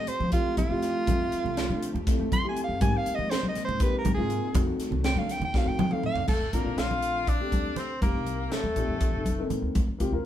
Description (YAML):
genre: electric jazz fusion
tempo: 242 BPM (eighths)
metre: 7/8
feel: straight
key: F major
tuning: A4 = 440 Hz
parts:
  - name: breathy soprano saxophone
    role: melody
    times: 0.0-9.5 s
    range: F4 to C6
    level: -31 LUFS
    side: right 2 dB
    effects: none
  - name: dark concert grand piano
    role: accompaniment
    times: 0.0-10.3 s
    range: Bb2 to E5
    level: -33 LUFS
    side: left 3 dB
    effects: none
  - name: string machine, cellos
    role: sustained chords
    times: 0.0-6.3 s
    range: C3 to G4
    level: -37 LUFS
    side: right 2 dB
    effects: ensemble chorus
  - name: upright bass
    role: bass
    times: 0.0-10.2 s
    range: F1 to F3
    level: -32 LUFS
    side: equal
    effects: none
  - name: crisp fusion drum kit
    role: drums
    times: 0.1-10.1 s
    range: crash cymbal, hi-hat, kick drum, snare drum, toms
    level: -29 LUFS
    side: equal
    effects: none
  - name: congas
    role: percussion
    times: 0.1-10.1 s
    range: none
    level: -33 LUFS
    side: right 1 dB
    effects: none
  - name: bright tenor saxophone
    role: second line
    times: 6.3-9.5 s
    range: A3 to F4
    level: -33 LUFS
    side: left 4 dB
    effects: none
room: moderate studio reverb, RT60 0.8 s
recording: band playing live in one room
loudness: -24 LUFS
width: side -11 dB against mid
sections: 0.0-6.3 A section; 6.3-10.3 B section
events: soprano saxophone solo 0.0-6.3; drum fill 5.5-6.3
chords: 0.0 Fmaj9; 2.8 Abmaj9; 4.5 F7b9; 6.3 Bbmaj9; 8.0 F9sus4; 9.8 Eb69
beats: 0.08 0.33 0.58 0.83 | 1.07 1.32 1.57 1.82 2.07 2.32 2.56 | 2.81 3.06 3.31 3.56 3.81 4.05 4.30 | 4.55 4.80 5.04 5.29 5.54 5.79 6.04 | 6.28 6.53 6.78 7.03 7.27 7.52 7.77 | 8.02 8.27 8.51 8.76 9.01 9.26 9.51 | 9.75 10.00 10.25